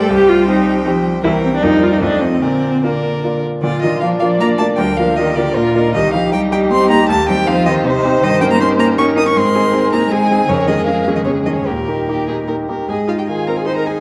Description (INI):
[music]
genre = quick classical-period movement for piano quintet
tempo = 156 BPM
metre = 3/4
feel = rubato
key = Bb major, Ab major from 8.2 s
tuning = A4 = 440 Hz
[part]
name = rich violin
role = melody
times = 0.0-14.0 s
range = Bb4 to Eb6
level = -22 LUFS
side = equal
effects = none
[part]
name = rich violin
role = second line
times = 0.0-14.0 s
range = D4 to C6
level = -29 LUFS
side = equal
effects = none
[part]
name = warm cello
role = second line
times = 0.0-14.0 s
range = Bb2 to F4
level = -22 LUFS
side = equal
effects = none
[part]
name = bright grand piano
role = accompaniment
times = 0.0-14.0 s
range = C2 to Bb4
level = -20 LUFS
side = equal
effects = none
[part]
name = rich viola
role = accompaniment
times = 0.0-13.9 s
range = Bb3 to D5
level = -21 LUFS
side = equal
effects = none
[sound]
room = wet recital hall reverb, RT60 1.3 s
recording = dark, warm production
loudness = -15 LUFS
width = mono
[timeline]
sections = 0.0-3.6 A section; 3.6-12.9 B section; 12.9-14.0 C section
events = none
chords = 0.1 Cm; 1.2 C7; 1.6 Bb/F; 2.0 F7; 2.4 Bb; 4.8 Bb/D; 6.0 Cm; 7.1 Cm/Eb; 8.2 Eb7/G; 9.4 Ab; 10.5 Db/F; 11.7 Eb; 12.9 Ab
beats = | 0.10 0.48 0.86 | 1.24 1.63 2.02 | 2.42 2.83 3.23 | 3.63 4.02 4.41 | 4.79 5.18 5.57 | 5.95 6.33 6.71 | 7.09 7.47 7.85 | 8.22 8.60 8.98 | 9.36 9.73 10.11 | 10.49 10.87 11.26 | 11.67 12.08 12.48 | 12.89 13.28 13.66